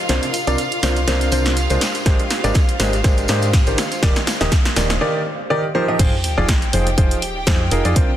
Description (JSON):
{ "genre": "piano house", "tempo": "122 BPM", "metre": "4/4", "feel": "swing 55% on 16ths", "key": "F dorian", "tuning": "A4 = 440 Hz", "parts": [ { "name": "bright studio violin section", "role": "sustained chords", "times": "0.0-8.2 s", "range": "F4 to G5", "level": "-28 LUFS", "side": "right 1 dB", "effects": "sidechain pumping" }, { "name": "granular cloud pad", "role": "texture", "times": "0.0-5.0 s", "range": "F4 to F5", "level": "-31 LUFS", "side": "left 1 dB", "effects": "built-in reverb, sidechain pumping" }, { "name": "clear baby grand piano", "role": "riff", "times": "0.1-8.1 s", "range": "C3 to Eb5", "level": "-21 LUFS", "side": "equal", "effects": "sidechain pumping, low-pass filter, digital delay" }, { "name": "solid FM bass", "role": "bass", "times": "0.1-8.1 s", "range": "Eb1 to Ab2", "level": "-21 LUFS", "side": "equal", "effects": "sidechain pumping" }, { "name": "punchy analog drum machine", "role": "drums", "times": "0.1-8.1 s", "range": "crash cymbal, hi-hat, snare drum", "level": "-23 LUFS", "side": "equal", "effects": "none" }, { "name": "tambourine", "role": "percussion", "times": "0.1-5.0 s", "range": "none", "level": "-32 LUFS", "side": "right 2 dB", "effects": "none" }, { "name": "electronic kick drum", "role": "drums", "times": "2.1-8.1 s", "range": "none", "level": "-16 LUFS", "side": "equal", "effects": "none" }, { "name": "sub drop", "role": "sound effects", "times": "6.1-8.0 s", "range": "none", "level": "-27 LUFS", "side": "equal", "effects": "none" } ], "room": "light reverb", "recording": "dense, heavily limited modern master", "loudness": "-15 LUFS", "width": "side -12 dB against mid", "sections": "0.0-6.0 A section; 6.0-8.2 B section", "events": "build-up 0.0-6.0; drum fill 0.0-5.0; filter sweep on grand piano 0.0-6.0; break 5.0-6.0; drop 6.0-8.2; impact 6.0-8.0", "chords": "0.1 C9sus4; 1.8 Abmaj9#11; 3.8 Ebmaj7; 6.0 Fm7" }